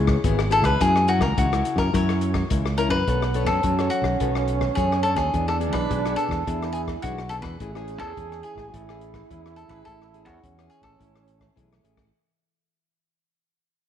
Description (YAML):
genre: samba and choro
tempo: 106 BPM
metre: 4/4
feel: straight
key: A major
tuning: A4 = 440 Hz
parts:
  - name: cavaquinho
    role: melody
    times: 0.0-11.8 s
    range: F#4 to C#5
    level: -25 LUFS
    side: left 2 dB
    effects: none
  - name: nylon-string guitar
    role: accompaniment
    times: 0.0-12.1 s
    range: B2 to C#5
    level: -29 LUFS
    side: left 8 dB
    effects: none
  - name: modern bright fingered electric bass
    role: bass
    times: 0.0-12.1 s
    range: G#1 to F#2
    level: -25 LUFS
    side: right 1 dB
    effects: none
  - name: open jazz drum kit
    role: drums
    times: 0.1-12.1 s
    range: hi-hat, kick drum, rim click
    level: -29 LUFS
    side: left 2 dB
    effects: none
  - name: breathy trombone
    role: second line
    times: 3.1-12.1 s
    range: A3 to G#4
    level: -30 LUFS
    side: right 9 dB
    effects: slapback echo
room: moderate echo chamber reverb, RT60 1.3 s, studio ambience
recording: 1960s-style stereo with parts hard left and right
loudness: -20 LUFS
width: side -10 dB against mid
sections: 0.0-12.1 A section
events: fade-out 0.0-12.1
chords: 0.0 C#m7; 0.8 F#7; 3.1 Bm9; 5.3 E7; 7.6 Amaj7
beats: 0.24 | 0.81 1.37 1.94 2.51 | 3.07 3.64 4.21 4.77 | 5.34 5.90 6.47 7.04 | 7.60 8.17 8.73 9.30 | 9.87 10.43 11.00 11.56